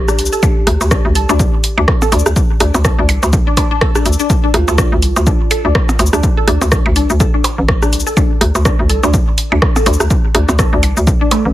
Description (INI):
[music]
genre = minimal techno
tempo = 124 BPM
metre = 4/4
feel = swing 58% on 16ths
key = D minor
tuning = A4 = 440 Hz
[part]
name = hollow knocking FM bass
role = bass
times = 0.0-11.5 s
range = A1 to D2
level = -14 LUFS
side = equal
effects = sidechain pumping
[part]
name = resonant blip pluck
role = riff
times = 0.1-11.4 s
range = A3 to A4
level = -20 LUFS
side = left 2 dB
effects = wide subtle chorus, sidechain pumping, digital delay
[part]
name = techno drum kit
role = drums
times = 0.1-11.4 s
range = cabasa, hi-hat, rim click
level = -19 LUFS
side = equal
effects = none
[part]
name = electronic rim click and percussion blips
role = percussion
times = 0.1-11.4 s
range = none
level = -19 LUFS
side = right 2 dB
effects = tape echo
[part]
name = electronic kick drum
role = drums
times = 0.4-11.2 s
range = none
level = -14 LUFS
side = equal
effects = none
[part]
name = kalimba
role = melody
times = 4.5-5.0 s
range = F4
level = -25 LUFS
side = right 2 dB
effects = tape echo
[sound]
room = little or no reverb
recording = heavily compressed radio sound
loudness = -10 LUFS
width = side -14 dB against mid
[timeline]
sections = 0.0-11.5 A section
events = none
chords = 0.0 D5